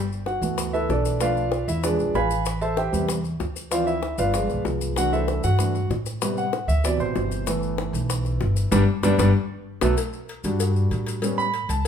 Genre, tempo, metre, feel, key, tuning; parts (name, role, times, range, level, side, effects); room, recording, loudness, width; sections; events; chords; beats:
Afro-Cuban jazz; 192 BPM; 4/4; straight; G major; A4 = 439 Hz
upright bass; bass; 0.0-11.9 s; G1 to A2; -25 LUFS; equal
maracas; percussion; 0.1-11.9 s; -35 LUFS; left 6 dB
warm concert grand piano; accompaniment; 0.3-11.8 s; B2 to B5; -24 LUFS; right 1 dB
bongos and cowbell; percussion; 0.3-11.9 s; -32 LUFS; left 5 dB
moderate large studio reverb, RT60 1.2 s; band playing live in one room; -21 LUFS; side -8 dB against mid
0.0-10.0 A section; 10.0-11.9 A section
grand piano solo 0.0-11.9; band accent 8.7-10.0; drum fill 9.5-10.0
0.0 G69; 1.2 Bm7b5; 1.8 E7b9; 2.5 Am9; 3.7 Dm7; 4.3 G7b9; 5.0 C6; 6.2 Am9; 6.8 D13; 7.5 G69; 9.3 B5; 10.0 Dadd11/G; 11.2 A9
0.27 0.58 0.89 | 1.21 1.52 1.83 2.15 | 2.46 2.77 3.08 3.40 | 3.71 4.02 4.34 4.65 | 4.96 5.28 5.59 5.90 | 6.22 6.53 6.84 7.16 | 7.47 7.78 8.09 8.41 | 8.72 9.03 9.35 9.66 | 9.97 10.29 10.60 10.91 | 11.23 11.54 11.85